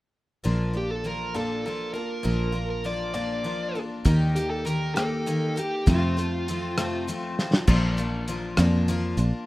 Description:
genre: folk rock and heartland rock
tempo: 66 BPM (dotted quarters)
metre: 6/8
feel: straight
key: unclear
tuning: A4 = 441 Hz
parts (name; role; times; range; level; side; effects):
- picked twelve-string acoustic guitar; accompaniment; 0.4-9.5 s; F2 to G4; -28 LUFS; left 2 dB; none
- fingered electric bass; bass; 0.5-9.3 s; Bb1 to F2; -25 LUFS; equal; none
- dark smooth lead guitar; melody; 0.8-7.0 s; F4 to D5; -31 LUFS; right 1 dB; overdrive, analog delay
- cloth-damped thuddy drum kit; drums; 4.1-9.3 s; crash cymbal, hi-hat, kick drum, rim click, snare drum; -24 LUFS; equal; none
room: studio reverb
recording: rough home demo mix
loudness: -23 LUFS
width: side -18 dB against mid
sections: 0.4-7.7 A section; 7.7-9.5 B section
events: drum fill 7.4-7.7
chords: 0.4 Bb; 4.1 Eb; 5.9 F; 7.7 Bb

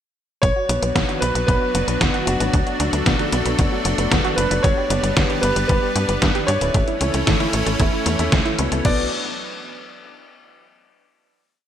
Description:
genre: italo disco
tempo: 114 BPM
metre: 4/4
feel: straight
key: B minor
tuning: A4 = 441 Hz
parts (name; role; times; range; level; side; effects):
- warm concert grand piano; melody; 0.4-9.1 s; F#4 to D5; -25 LUFS; equal; ping-pong delay
- lush unison pad; sustained chords; 0.4-9.1 s; E3 to D4; -25 LUFS; equal; chorus
- analog pluck; arpeggios; 0.4-9.1 s; A3 to B4; -29 LUFS; right 3 dB; chorus, phaser, ping-pong delay
- tight sequencer bass; bass; 0.4-9.1 s; D1 to G2; -23 LUFS; equal; tube saturation
- detuned 8-bit digital drum machine; drums; 0.4-9.0 s; crash cymbal, hi-hat, snare drum; -23 LUFS; left 1 dB; studio reverb, gated reverb
- electronic kick drum; drums; 0.4-9.0 s; none; -21 LUFS; equal; studio reverb
- bell-like tine electric piano; stabs; 0.7-9.0 s; B3 to E5; -29 LUFS; left 3 dB; lush chorus, ping-pong delay
room: moderate plate reverb, RT60 1.9 s, digital ambience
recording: bright 1980s-style digital production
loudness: -17 LUFS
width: side -10 dB against mid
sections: 0.4-8.9 verse; 8.9-11.0 final chord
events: none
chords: 0.4 Bm; 4.6 G; 6.7 A; 8.9 Bm

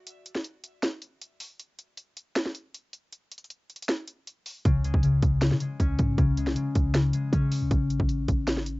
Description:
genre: hip hop, trap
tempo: 157 BPM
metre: 4/4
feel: half-time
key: unclear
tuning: A4 = 440 Hz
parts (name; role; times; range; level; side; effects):
- trap drum kit; drums; 0.1-8.8 s; hi-hat, kick drum, snare drum; -27 LUFS; equal; overdrive, cassette tape
- concert harp; accompaniment; 4.7-8.8 s; C#3 to C#4; -26 LUFS; left 2 dB; low-pass filter, cassette tape
- clean 808-style bass; bass; 4.7-8.8 s; G#1 to C#3; -28 LUFS; equal; none
room: little or no reverb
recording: home recording on cassette, nothing above 7.6 kHz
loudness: -24 LUFS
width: side -21 dB against mid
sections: 0.0-8.8 A section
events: break 0.0-4.7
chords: 0.0 N.C.; 4.7 C#5; 7.7 N.C.

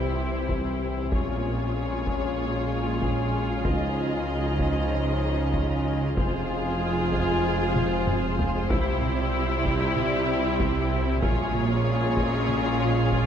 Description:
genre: cinematic, hybrid orchestral and electronic film score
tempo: 95 BPM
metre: 4/4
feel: straight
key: unclear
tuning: A4 = 440 Hz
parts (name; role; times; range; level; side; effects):
- warm symphonic violin section; melody; 0.0-13.3 s; C5 to Eb5; -34 LUFS; left 5 dB; none
- dark symphonic violin section; second line; 0.0-13.3 s; G4 to Ab4; -34 LUFS; left 2 dB; none
- clear symphonic viola section; accompaniment; 0.0-13.3 s; E4 to F4; -31 LUFS; equal; none
- deep rumbling drone; sustained chords; 0.0-13.3 s; G3 to F5; -34 LUFS; left 1 dB; built-in reverb
- warm French horn section; sustained chords; 0.0-13.3 s; E3 to F4; -32 LUFS; left 3 dB; none
- clear symphonic double bass section; bass; 0.0-13.3 s; F1 to Db2; -31 LUFS; right 4 dB; none
- dark symphonic cello section; bass; 0.0-13.3 s; F2 to Db3; -31 LUFS; right 3 dB; none
- swelling detuned saw bass; bass; 0.0-13.3 s; F1 to Db2; -32 LUFS; equal; none
- impact; sound effects; 0.0-1.1 s; none; barely audible; none; none
- solo taiko drums; drums; 0.5-13.3 s; none; -30 LUFS; equal; none
room: moderate scoring stage reverb, RT60 1.5 s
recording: none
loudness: -23 LUFS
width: side -8 dB against mid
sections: 0.0-13.3 A section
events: impact 0.0-1.1; drum fill 7.7-8.7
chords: 0.0 C; 1.1 Bbm7; 3.6 Dbadd9; 6.2 Fm; 8.7 C; 11.2 Bbm7

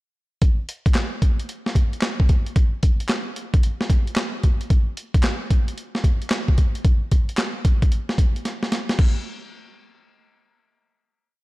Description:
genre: R&B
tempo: 112 BPM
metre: 4/4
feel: swing 65% on 16ths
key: none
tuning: none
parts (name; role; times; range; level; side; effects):
- breakbeat sampler-style drum kit; drums; 0.4-9.2 s; crash cymbal, handclaps, hi-hat, kick drum, snare drum; -18 LUFS; equal; none
room: little or no reverb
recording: dark, warm production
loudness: -19 LUFS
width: side -20 dB against mid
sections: 0.4-9.0 verse; 9.0-11.1 final hit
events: drum fill 8.5-9.0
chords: none

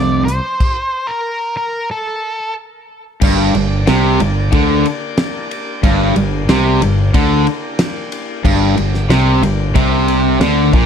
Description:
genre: classic rock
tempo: 92 BPM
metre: 4/4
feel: straight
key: G minor from 3.2 s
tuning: A4 = 438 Hz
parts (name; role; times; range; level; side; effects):
- octave-fuzz lead guitar; melody; 0.0-2.5 s; A4 to D5; -19 LUFS; equal; distortion, analog delay
- crunchy overdriven guitar; riff; 0.0-10.9 s; F2 to F4; -17 LUFS; left 10 dB; none
- distorted electric guitar; riff; 0.0-10.9 s; F2 to F3; -17 LUFS; right 12 dB; overdrive
- growling fingered electric bass; bass; 0.0-10.9 s; G1 to D2; -16 LUFS; equal; overdrive
- damped 70s drum kit; drums; 0.3-10.9 s; crash cymbal, hi-hat, kick drum, ride cymbal, snare drum; -18 LUFS; equal; none
- bright tonewheel organ; sustained chords; 3.2-10.9 s; Bb3 to D5; -27 LUFS; left 1 dB; slow rotary speaker, overdrive
room: light reverb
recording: none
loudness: -13 LUFS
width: side -7 dB against mid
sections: 0.0-3.2 A section; 3.2-10.9 B section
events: stop 0.6-3.2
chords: 0.0 F; 0.6 N.C.; 3.2 Gm

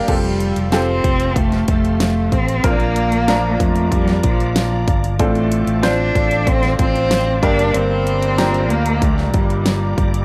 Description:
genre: piano-driven pop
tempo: 94 BPM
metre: 4/4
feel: straight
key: unclear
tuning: A4 = 440 Hz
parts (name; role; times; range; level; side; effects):
- bright upright piano; accompaniment; 0.0-10.2 s; G2 to Bb5; -24 LUFS; equal; none
- bright tonewheel organ; sustained chords; 0.0-10.2 s; F4 to D6; -34 LUFS; equal; overdrive, chorus vibrato, slow rotary speaker
- warm cello; melody; 0.1-9.9 s; F3 to D4; -22 LUFS; equal; delay
- fingered electric bass; bass; 0.1-10.2 s; F1 to F2; -22 LUFS; equal; none
- pop drum kit; drums; 0.1-10.2 s; crash cymbal, hi-hat, kick drum, snare drum; -22 LUFS; equal; none
room: light reverb, small room ambience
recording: none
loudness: -17 LUFS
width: mono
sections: 0.1-10.2 A section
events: none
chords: 0.1 Fadd9; 2.6 Bb; 5.2 Dm7/A; 7.4 Gm

